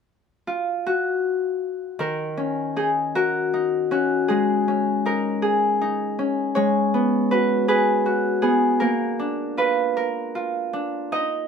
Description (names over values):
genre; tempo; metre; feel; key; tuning
children's music, lullaby; 53 BPM (dotted quarters); 6/8; rubato; Eb minor; A4 = 440 Hz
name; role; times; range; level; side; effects
Celtic harp; solo; 0.5-11.5 s; Eb3 to Eb5; -20 LUFS; left 1 dB; none
room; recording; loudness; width
light reverb; close, detailed microphones; -20 LUFS; side -6 dB against mid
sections
0.0-2.0 A section; 2.0-11.5 B section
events
none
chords
0.0 N.C.; 2.0 Ebm7; 4.3 Absus4; 6.6 Abm7; 8.8 Bb